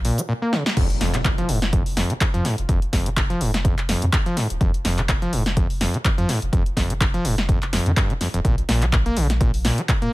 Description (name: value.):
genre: acid house.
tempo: 125 BPM.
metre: 4/4.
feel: swing 55% on 16ths.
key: unclear.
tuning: A4 = 440 Hz.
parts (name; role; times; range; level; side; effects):
overdriven acid bass; riff; 0.0-10.1 s; F2 to Bb3; -24 LUFS; equal; distortion, sidechain pumping, tape echo.
warm sub bass; bass; 0.0-10.1 s; Eb1 to Bb2; -25 LUFS; equal; sidechain pumping.
punchy analog drum machine; drums; 0.0-10.1 s; crash cymbal, handclaps, hi-hat, snare drum; -25 LUFS; equal; overdrive.
electronic kick drum; drums; 0.8-10.0 s; none; -21 LUFS; equal; overdrive.
impact; sound effects; 0.8-2.7 s; none; -30 LUFS; equal; none.
room: light reverb.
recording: none.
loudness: -18 LUFS.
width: side -19 dB against mid.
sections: 0.8-10.1 A section.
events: drum fill 0.5; drop 0.8-10.1; impact 0.8-2.7.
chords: 0.0 Bbm; 0.8 N.C..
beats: 0.29 | 0.77 1.25 1.73 2.21 | 2.69 3.17 3.65 4.13 | 4.61 5.09 5.57 6.05 | 6.53 7.01 7.49 7.97 | 8.45 8.93 9.41 9.89.